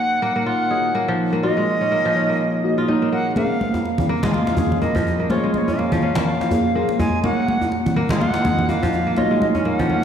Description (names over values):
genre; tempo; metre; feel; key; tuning
afro house; 124 BPM; 4/4; swing 56% on 16ths; unclear; A4 = 440 Hz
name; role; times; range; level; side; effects
bright reedy bansuri; melody; 0.0-10.0 s; Db5 to Ab5; -23 LUFS; equal; ping-pong delay
dark analog pad; sustained chords; 0.0-10.0 s; Bb3 to Db5; -26 LUFS; right 2 dB; chorus
kora; arpeggios; 0.0-10.0 s; F3 to Ab4; -23 LUFS; equal; ping-pong delay
deep mellow chord stab; stabs; 0.0-10.0 s; Bb3 to Eb5; -26 LUFS; left 1 dB; chorus, phaser, ping-pong delay
congas; percussion; 3.4-10.0 s; none; -24 LUFS; right 1 dB; none
djembe; percussion; 3.7-9.9 s; none; -25 LUFS; left 1 dB; none
room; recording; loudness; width
moderate lush hall reverb, RT60 2.7 s; played on a big sound system in a bare room, stone room reverb; -17 LUFS; side -8 dB against mid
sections
0.0-10.0 A section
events
none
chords
0.0 Gb6; 3.4 Bbm9; 7.2 Gb6